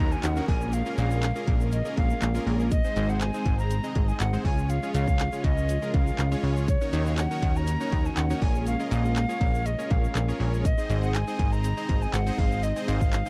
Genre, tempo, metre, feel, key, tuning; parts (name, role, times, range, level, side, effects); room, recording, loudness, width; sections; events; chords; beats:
dance-pop; 121 BPM; 4/4; straight; A4 = 440 Hz
breathy mellow alto recorder; melody; 0.0-13.3 s; Db5 to Bb5; -36 LUFS; equal
big bright polysynth; accompaniment; 0.0-13.3 s; Ab3 to Eb5; -36 LUFS; equal; sidechain pumping
string machine, cellos; sustained chords; 0.0-13.3 s; Db3 to Ab4; -39 LUFS; equal
plucky analog bass; bass; 0.0-13.2 s; Ab1 to Eb2; -28 LUFS; equal; sidechain pumping
downlifter; sound effects; 0.0-2.7 s; -49 LUFS; equal
egg shaker; percussion; 0.1-13.3 s; -52 LUFS; equal
pop drum kit; drums; 0.2-13.3 s; handclaps, hi-hat, kick drum; -29 LUFS; equal
little or no reverb; dry, close 1970s-style studio recording; -26 LUFS; mono
0.0-13.3 A section
0.5 Bbm7; 2.7 Ab; 4.5 Db; 6.7 Ebm7; 8.4 Bbm7; 10.6 Ab
0.24 | 0.73 1.23 1.72 2.22 | 2.71 3.21 3.71 4.20 | 4.70 5.19 5.69 6.19 | 6.68 7.18 7.67 8.17 | 8.66 9.16 9.66 10.15 | 10.65 11.14 11.64 12.14 | 12.63 13.13